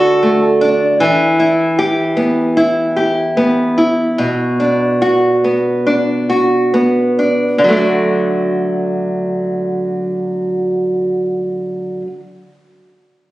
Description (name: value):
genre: pop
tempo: 65-77 BPM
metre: 4/4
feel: swing 55% on 16ths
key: D major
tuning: A4 = 439 Hz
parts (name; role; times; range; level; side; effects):
- nylon-string guitar; accompaniment; 0.0-12.2 s; B2 to G4; -12 LUFS; equal; none
room: light reverb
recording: recorded on a phone in the room, studio reverb, compression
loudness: -12 LUFS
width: side -16 dB against mid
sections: 0.0-7.6 A section; 7.6-11.3 B section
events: slowing down 1.0-7.6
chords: 0.0 D; 1.0 Em; 4.2 Bm; 7.6 D